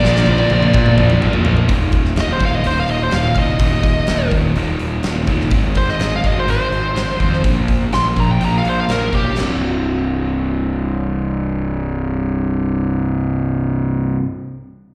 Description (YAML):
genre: hard rock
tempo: 125 BPM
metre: 4/4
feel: straight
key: C minor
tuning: A4 = 440 Hz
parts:
  - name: bluesy overdriven lead guitar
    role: melody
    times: 0.0-9.4 s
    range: G4 to C6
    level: -22 LUFS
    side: equal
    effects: distortion, slapback echo
  - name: chorused pulse-width pad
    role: sustained chords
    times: 0.0-1.7 s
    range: Bb3 to C5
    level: -33 LUFS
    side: equal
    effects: none
  - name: crunchy overdriven guitar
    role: riff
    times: 0.0-14.2 s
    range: C2 to Bb3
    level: -22 LUFS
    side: equal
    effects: slapback echo
  - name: scooped high-gain guitar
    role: riff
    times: 0.0-1.7 s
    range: Bb2 to Bb3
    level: -22 LUFS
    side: equal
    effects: distortion
  - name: fuzz picked electric bass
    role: bass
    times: 0.0-14.2 s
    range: C1 to Bb2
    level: -23 LUFS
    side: equal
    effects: overdrive
  - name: huge arena drum kit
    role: drums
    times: 0.0-9.5 s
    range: crash cymbal, hi-hat, kick drum, snare drum, toms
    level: -22 LUFS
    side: equal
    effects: none
room: small room ambience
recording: live gig heard through the venue's PA, recital hall reverb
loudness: -17 LUFS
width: mono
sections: 0.0-1.7 A section; 1.7-9.4 B section; 9.4-13.2 C section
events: drum fill 0.0-1.7; lead electric guitar solo 1.7-9.4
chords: 0.0 Bb; 1.7 Eb5; 5.5 Ab; 7.4 Bb5; 9.4 C5